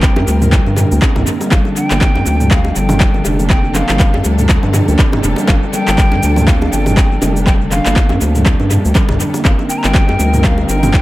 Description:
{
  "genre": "afro house",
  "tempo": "121 BPM",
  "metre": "4/4",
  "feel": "swing 58% on 16ths",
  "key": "G minor",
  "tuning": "A4 = 440 Hz",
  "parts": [
    { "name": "hollow concert flute", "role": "melody", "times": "0.0-11.0 s", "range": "F5 to Bb5", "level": "-23 LUFS", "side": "left 1 dB", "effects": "vintage 12-bit sampler grit, tape echo" },
    { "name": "dark chamber string section", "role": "sustained chords", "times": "0.0-11.0 s", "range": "F3 to Bb4", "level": "-24 LUFS", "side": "left 1 dB", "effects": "sidechain pumping" },
    { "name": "round analog bass", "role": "bass", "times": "0.0-11.0 s", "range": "F1 to G2", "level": "-16 LUFS", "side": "equal", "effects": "sidechain pumping" },
    { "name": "deep house drum kit", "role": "drums", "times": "0.0-11.0 s", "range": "cabasa, handclaps, toms", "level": "-18 LUFS", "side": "equal", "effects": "overdrive, tape echo" },
    { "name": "electronic kick drum", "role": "drums", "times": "0.0-11.0 s", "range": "none", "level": "-12 LUFS", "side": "equal", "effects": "overdrive" },
    { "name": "bongos", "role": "percussion", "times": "0.2-10.9 s", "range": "none", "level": "-22 LUFS", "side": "right 2 dB", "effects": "tape echo" },
    { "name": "marimba with soft mallets", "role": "arpeggios", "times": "0.3-11.0 s", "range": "D3 to D4", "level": "-19 LUFS", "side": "equal", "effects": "sidechain pumping, tape echo" }
  ],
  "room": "light reverb",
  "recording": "echo-heavy mix",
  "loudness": "-10 LUFS",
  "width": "side -17 dB against mid",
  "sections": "0.0-11.0 A section",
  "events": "none",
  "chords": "0.0 C5; 1.5 Gm9; 9.4 Cm7"
}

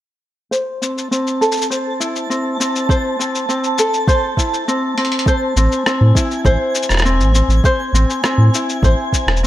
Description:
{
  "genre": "folktronica",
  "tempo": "101 BPM",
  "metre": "4/4",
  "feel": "straight",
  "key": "A harmonic minor",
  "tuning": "A4 = 440 Hz",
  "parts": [
    { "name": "ukulele", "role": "arpeggios", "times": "0.5-9.5 s", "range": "C4 to C5", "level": "-18 LUFS", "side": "equal", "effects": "low-pass filter, ping-pong delay" },
    { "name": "lo-fi sampler-style drum kit", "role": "drums", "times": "0.5-9.5 s", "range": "cabasa, hi-hat, rim click", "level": "-21 LUFS", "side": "left 2 dB", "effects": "none" },
    { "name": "twinkling granular texture", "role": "texture", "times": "1.0-9.5 s", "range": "G#5 to A5", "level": "-25 LUFS", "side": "right 1 dB", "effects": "built-in reverb" },
    { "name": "electronic kick drum", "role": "drums", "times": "2.9-9.2 s", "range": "none", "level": "-16 LUFS", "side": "equal", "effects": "none" },
    { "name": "warm sub bass", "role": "bass", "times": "5.6-9.5 s", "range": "E1 to A2", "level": "-13 LUFS", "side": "equal", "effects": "none" }
  ],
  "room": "light reverb, digital ambience",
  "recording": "none",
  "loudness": "-14 LUFS",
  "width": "side -13 dB against mid",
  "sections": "0.5-5.3 A section; 5.3-9.5 B section",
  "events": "filter sweep on ukulele 0.5-5.3; drum fill 5.0",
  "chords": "0.5 Am"
}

